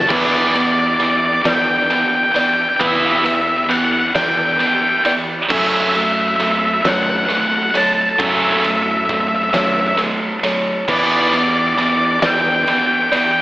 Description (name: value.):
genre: post-rock.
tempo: 45 BPM (dotted quarters).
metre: 6/8.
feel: straight.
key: E dorian.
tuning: A4 = 440 Hz.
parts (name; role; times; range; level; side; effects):
octave-fuzz lead guitar; melody; 0.0-13.4 s; D5 to A5; -16 LUFS; equal; distortion, digital delay.
clear symphonic string section; sustained chords; 0.0-13.4 s; E3 to A4; -30 LUFS; left 1 dB; none.
felt-muted upright piano; arpeggios; 0.0-13.4 s; A4 to D5; -26 LUFS; equal; digital delay.
tight distorted guitar; riff; 0.0-13.4 s; E3 to E4; -20 LUFS; right 2 dB; distortion.
growling fingered electric bass; bass; 0.0-12.6 s; E2 to F#2; -26 LUFS; equal; overdrive.
oversized low-tuned drum kit; drums; 0.1-13.3 s; crash cymbal, kick drum, ride cymbal, snare drum; -21 LUFS; equal; none.
room: light reverb, small room ambience.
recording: AM radio sound.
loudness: -13 LUFS.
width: side -17 dB against mid.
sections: 0.1-13.4 A section.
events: none.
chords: 0.1 Em7; 5.5 F#m7; 10.9 Em7.